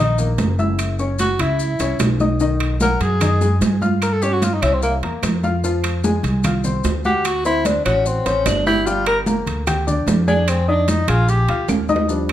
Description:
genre	Afro-Cuban jazz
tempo	149 BPM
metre	4/4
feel	straight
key	unclear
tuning	A4 = 439 Hz
part	mellow tenor saxophone	melody	0.0-11.7 s	Bb3 to Bb4	-20 LUFS	equal	none
part	warm baby grand piano	accompaniment	0.0-12.3 s	D#3 to Ab6	-23 LUFS	left 3 dB	none
part	upright bass	bass	0.0-12.3 s	Gb1 to G2	-20 LUFS	equal	none
part	congas	percussion	0.2-12.3 s	none	-24 LUFS	right 1 dB	none
part	maracas	percussion	0.2-12.3 s	none	-33 LUFS	left 7 dB	none
part	timbales	percussion	0.4-12.3 s	none	-27 LUFS	right 6 dB	none
part	claves	percussion	0.8-12.3 s	none	-33 LUFS	right 5 dB	none
room	light reverb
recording	none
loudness	-16 LUFS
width	side -12 dB against mid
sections	0.0-12.1 A section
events	tenor saxophone solo 0.0-12.1; drum fill 11.7-12.1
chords	0.0 Eb5; 0.8 Gb5; 2.4 B6; 4.0 A7b13 (rootless); 4.8 C7; 5.6 Fm; 7.2 D7; 8.9 Gm7; 10.5 Fm7; 11.3 Bb6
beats	0.39 | 0.79 1.20 1.60 2.00 | 2.41 2.81 3.21 3.62 | 4.02 4.42 4.83 5.23 | 5.63 6.04 6.44 6.85 | 7.25 7.65 8.06 8.46 | 8.86 9.27 9.67 10.07 | 10.48 10.88 11.28 11.69 | 12.09

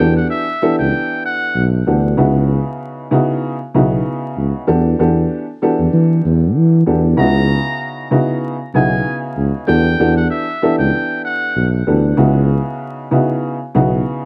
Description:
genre	hip hop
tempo	96 BPM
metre	4/4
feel	swing 55% on 16ths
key	unclear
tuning	A4 = 440 Hz
part	trumpet with metal mute	melody	0.0-1.7, 7.2-11.7 s	E5 to A#5	-24 LUFS	equal	high-pass filter, low-pass filter, tape echo
part	dark upright piano	accompaniment	0.0-14.3 s	C#3 to A4	-19 LUFS	equal	cassette tape, high-pass filter, low-pass filter
part	mellow tuba	bass	0.0-14.0 s	B1 to E3	-17 LUFS	equal	none
room	moderate small room reverb, RT60 0.5 s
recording	dark, warm production, vinyl crackle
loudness	-16 LUFS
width	mono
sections	0.0-14.3 A section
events	none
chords	0.0 Em11; 2.2 C#m11; 4.7 Em11; 7.2 C#m11; 9.7 Em11; 12.2 C#m11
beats	0.30 0.93 1.55 | 2.18 2.80 3.43 4.05 | 4.68 5.30 5.93 6.55 | 7.18 7.80 8.43 9.05 | 9.68 10.30 10.93 11.55 | 12.18 12.80 13.43 14.05

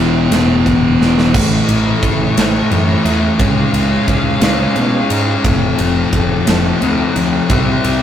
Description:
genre	quiet-loud alternative rock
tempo	58 BPM (dotted quarters)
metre	6/8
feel	straight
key	unclear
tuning	A4 = 437 Hz
part	clear studio string section	sustained chords	0.0-8.0 s	E3 to E#5	-23 LUFS	equal	none
part	fuzz guitar	riff	0.0-1.3 s	E2 to E3	-14 LUFS	right 1 dB	distortion
part	thick fuzz guitar	riff	0.0-8.0 s	E2 to C#4	-15 LUFS	left 2 dB	distortion
part	growling fingered electric bass	bass	0.0-8.0 s	E1 to B2	-20 LUFS	right 1 dB	overdrive
part	big rock drum kit	drums	0.3-8.0 s	crash cymbal, kick drum, ride cymbal, snare drum	-16 LUFS	right 1 dB	none
room	moderate small room ambience, RT60 0.5 s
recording	rough rehearsal-room recording, tube saturation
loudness	-11 LUFS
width	side -10 dB against mid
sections	0.0-1.3 A section; 1.3-8.0 B section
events	drum fill 1.0-1.3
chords	0.0 Em; 1.3 A; 3.4 C#; 5.4 F; 7.5 C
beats	0.31 | 1.34 2.37 | 3.39 4.42 | 5.44 6.47 | 7.50

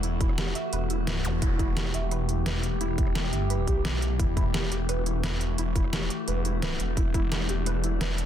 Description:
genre	dark technical drum and bass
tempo	173 BPM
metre	4/4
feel	straight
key	E minor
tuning	A4 = 440 Hz
part	metallic inharmonic drone	sustained chords	0.0-8.3 s	E3 to G4	-33 LUFS	left 2 dB	chorus, built-in reverb, sidechain pumping
part	soft round pluck	arpeggios	0.0-8.1 s	E4 to E5	-35 LUFS	right 3 dB	ensemble chorus, sidechain pumping, tape echo
part	phased detuned saw bass	bass	0.0-8.3 s	E1 to B1	-28 LUFS	equal	phaser, overdrive
part	dubstep drum kit	drums	0.0-8.3 s	hi-hat, rim click, snare drum	-33 LUFS	equal	none
part	electronic kick drum	drums	0.2-7.2 s	none	-27 LUFS	equal	none
part	zap	sound effects	1.2-1.3 s	none	-40 LUFS	equal	none
room	digital ambience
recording	dense, heavily limited modern master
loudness	-25 LUFS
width	side -10 dB against mid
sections	0.0-8.3 A section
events	none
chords	0.0 Emadd9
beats	| 0.03 0.38 0.73 1.07 | 1.42 1.77 2.11 2.46 | 2.81 3.15 3.50 3.85 | 4.20 4.54 4.89 5.24 | 5.58 5.93 6.28 6.62 | 6.97 7.32 7.66 8.01

